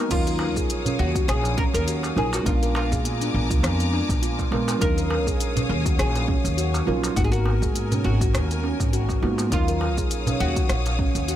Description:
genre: organic downtempo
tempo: 102 BPM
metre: 4/4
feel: swing 55% on 16ths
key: Eb minor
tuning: A4 = 441 Hz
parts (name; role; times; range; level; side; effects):
- muted felt-like synth keys; accompaniment; 0.0-11.4 s; Gb3 to F5; -30 LUFS; right 3 dB; chorus, sidechain pumping, ping-pong delay
- clear studio string section; sustained chords; 0.0-11.4 s; Cb4 to Eb6; -32 LUFS; left 2 dB; vintage 12-bit sampler grit, sidechain pumping
- handpan; arpeggios; 0.0-11.4 s; Db4 to Bb4; -30 LUFS; right 1 dB; ping-pong delay
- oud; melody; 0.1-11.4 s; F4 to Bb4; -31 LUFS; left 1 dB; ping-pong delay
- upright bass; bass; 0.1-11.4 s; Ab1 to Bb2; -25 LUFS; equal; sidechain pumping
- electronic kick drum; drums; 0.1-11.1 s; none; -26 LUFS; equal; none
- organic electronic drum kit; drums; 0.1-11.4 s; crash cymbal, hi-hat, rim click, shaker; -31 LUFS; left 2 dB; overdrive
- darbuka; percussion; 0.1-11.3 s; none; -32 LUFS; right 1 dB; none
room: little or no reverb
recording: none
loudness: -20 LUFS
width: side -11 dB against mid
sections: 0.0-11.4 A section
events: none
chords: 0.1 Ebm9; 2.5 Bb7b9; 4.8 Ebm9; 7.2 Abm9; 9.5 Ebm9

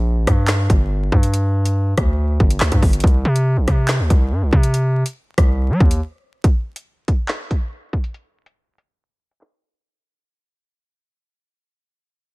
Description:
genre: hip hop, drill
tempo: 141 BPM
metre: 4/4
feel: half-time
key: G minor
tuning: A4 = 441 Hz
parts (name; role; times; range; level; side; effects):
- distorted 808-style bass; bass; 0.0-6.0 s; G1 to G3; -17 LUFS; equal; distortion
- drill drum kit; drums; 0.3-9.9 s; handclaps, hi-hat, kick drum, rim click, snare drum; -16 LUFS; equal; soft clipping on snare
room: little or no reverb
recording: dense, heavily limited modern master, vinyl crackle, low-pass filter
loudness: -15 LUFS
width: side -25 dB against mid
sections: 0.0-6.4 A section; 6.4-9.8 B section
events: break 6.0-6.4; fade-out 6.4-9.8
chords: none

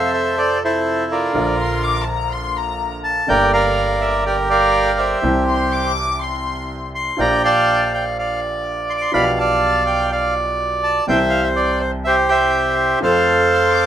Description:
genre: tango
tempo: 123 BPM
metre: 4/4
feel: rubato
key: unclear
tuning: A4 = 439 Hz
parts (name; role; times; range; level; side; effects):
- bandoneon; melody; 0.0-13.9 s; E4 to D6; -16 LUFS; right 1 dB; none
- bright upright piano; accompaniment; 0.0-13.9 s; G1 to A4; -24 LUFS; equal; none
- upright bass; bass; 0.0-13.9 s; G1 to F2; -28 LUFS; equal; none
- warm studio violin section; second line; 1.6-6.8, 13.5-13.9 s; A5 to D6; -23 LUFS; left 5 dB; none
room: moderate studio reverb, RT60 0.5 s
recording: rough home demo mix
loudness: -15 LUFS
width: side -10 dB against mid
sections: 0.0-13.9 A section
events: none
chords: 0.0 Fmaj7; 1.3 Bb; 3.3 Gm; 5.2 C; 7.2 Bb6; 9.1 G7/B; 11.1 C; 13.0 F

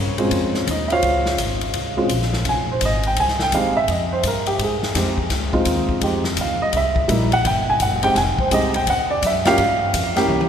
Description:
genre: jazz piano trio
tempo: 168 BPM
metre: 4/4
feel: swing 64% on 8ths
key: F minor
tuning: A4 = 440 Hz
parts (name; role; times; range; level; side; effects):
- upright bass; bass; 0.0-10.5 s; F1 to Ab2; -24 LUFS; equal; none
- warm upright piano; melody; 0.2-10.5 s; G3 to Ab5; -19 LUFS; right 1 dB; none
- swinging big-band drum kit; drums; 0.2-10.5 s; hi-hat, kick drum, ride cymbal, snare drum, toms; -25 LUFS; left 3 dB; none
room: wet cathedral reverb, RT60 6.6 s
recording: recorded in a church or concert hall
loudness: -17 LUFS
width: side -8 dB against mid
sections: 0.0-10.5 A section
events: upright piano solo 0.0-10.5; drum fill 10.3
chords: 0.0 Bbm9; 2.5 Fm9; 5.3 Dbmaj7; 6.7 C7#9; 8.2 Fm9; 8.9 D; 9.6 G7(no3)

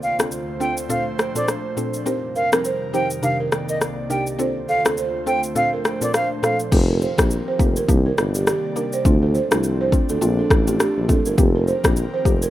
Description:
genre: afrobeats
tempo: 103 BPM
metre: 4/4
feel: swing 58% on 16ths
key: unclear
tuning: A4 = 440 Hz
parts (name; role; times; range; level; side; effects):
- breathy bright jazz flute; melody; 0.0-6.6 s; D5 to G5; -23 LUFS; right 1 dB; none
- airy breathy pad; sustained chords; 0.0-12.5 s; C2 to D5; -28 LUFS; right 1 dB; chorus
- afro-pop drum kit; drums; 0.0-12.5 s; crash cymbal, kick drum, rim click, shaker; -20 LUFS; left 1 dB; none
- mallet-like synth pluck; accompaniment; 0.2-12.5 s; Bb2 to Bb4; -26 LUFS; left 1 dB; chorus, phaser
- balafon; riff; 2.1-12.5 s; G4 to C5; -25 LUFS; right 4 dB; digital delay
- mellow tuba; bass; 6.7-12.5 s; F1 to D2; -20 LUFS; left 1 dB; none
room: studio ambience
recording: rough home demo mix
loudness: -18 LUFS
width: side -14 dB against mid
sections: 0.0-6.7 A section; 6.7-12.5 B section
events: none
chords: 0.0 Dm7; 0.9 Bbmaj7; 2.1 F7sus4; 3.2 Cm9; 4.4 Dm7; 5.6 Bbmaj7; 6.7 F7sus4; 7.9 Cm9; 9.1 Dm7; 10.2 Bbmaj7; 11.4 F7sus4

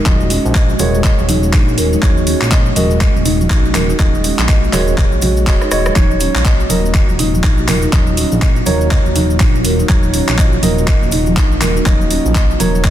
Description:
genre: afro house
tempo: 122 BPM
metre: 4/4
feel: swing 60% on 16ths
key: Eb minor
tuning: A4 = 441 Hz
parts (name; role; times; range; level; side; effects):
- ethereal airy pad; sustained chords; 0.0-12.9 s; Eb3 to Gb4; -22 LUFS; equal; ensemble chorus, built-in reverb, sidechain pumping
- tine electric piano; stabs; 0.0-12.9 s; Gb3 to Eb5; -21 LUFS; right 2 dB; sidechain pumping, ping-pong delay
- marimba with soft mallets; arpeggios; 0.1-12.9 s; Db4 to Eb5; -21 LUFS; equal; sidechain pumping, ping-pong delay
- smooth synth bass; bass; 0.1-12.9 s; Eb1 to Bb1; -18 LUFS; equal; sidechain pumping
- electronic kick drum; drums; 0.1-12.9 s; none; -13 LUFS; equal; none
- house drum kit; drums; 0.1-12.9 s; handclaps, hi-hat, rim click; -20 LUFS; equal; soft clipping on snare
- cabasa; percussion; 0.1-12.9 s; none; -29 LUFS; left 4 dB; none
- congas; percussion; 0.1-12.9 s; none; -22 LUFS; right 1 dB; none
room: little or no reverb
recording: dense, heavily limited modern master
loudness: -11 LUFS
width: side -12 dB against mid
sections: 0.0-12.9 A section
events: drum fill 5.6-6.0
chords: 0.0 Gbsus2/Eb; 6.0 Ebm7

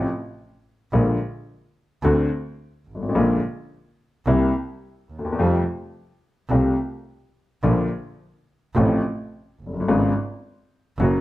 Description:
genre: tango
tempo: 108 BPM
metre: 4/4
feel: rubato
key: Bb major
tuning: A4 = 440 Hz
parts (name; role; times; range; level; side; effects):
- warm upright piano; accompaniment; 0.0-11.2 s; F1 to F#4; -21 LUFS; left 2 dB; none
- clear double bass; bass; 0.0-11.2 s; Gb1 to F2; -24 LUFS; right 2 dB; none
room: moderate large studio reverb, RT60 0.9 s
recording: none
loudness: -20 LUFS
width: side -16 dB against mid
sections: 0.0-11.2 A section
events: none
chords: 0.0 N.C.; 0.9 Bb7; 2.0 D7; 3.2 Bb7; 4.3 C7; 5.4 Fadd9; 7.6 Bb; 8.8 F/A; 9.9 Db7/Ab

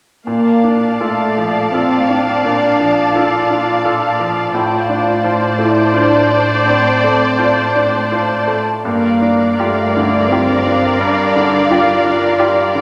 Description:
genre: cinematic, emotional film score for orchestra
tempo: 84 BPM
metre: 3/4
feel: rubato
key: unclear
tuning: A4 = 438 Hz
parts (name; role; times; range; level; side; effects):
- warm symphonic violin section; melody; 0.3-12.8 s; F5 to A5; -24 LUFS; equal; none
- warm symphonic violin section; second line; 0.3-12.8 s; D5 to F5; -21 LUFS; equal; none
- bright baby grand piano; accompaniment; 0.3-12.8 s; G2 to C5; -21 LUFS; equal; none
- clear symphonic viola section; accompaniment; 0.3-12.8 s; Bb4 to D5; -23 LUFS; equal; none
- mellow French horn section; sustained chords; 0.3-12.8 s; A3 to F4; -19 LUFS; equal; none
- rich symphonic cello section; bass; 0.3-12.8 s; G2 to Bb2; -26 LUFS; equal; none
room: wet concert hall reverb, RT60 2.0 s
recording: none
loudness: -14 LUFS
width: mono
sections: 0.3-12.8 A section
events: none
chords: 0.3 Bbmaj7; 4.5 Dm7/A; 8.9 Gm7

